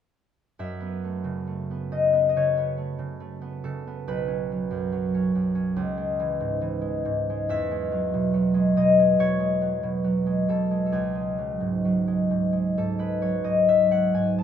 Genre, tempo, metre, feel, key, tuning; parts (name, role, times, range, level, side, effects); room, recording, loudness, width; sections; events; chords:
classical, solo harp piece; 69 BPM; 4/4; uneven beats, rubato; F# dorian; A4 = 440 Hz
concert harp; solo; 0.6-14.4 s; B1 to A5; -22 LUFS; left 1 dB
light reverb; close, detailed microphones; -22 LUFS; side -9 dB against mid
0.6-14.4 A section
0.6 F#m7; 4.1 Bsus2; 5.8 C#m7; 7.5 E69; 10.9 C#sus4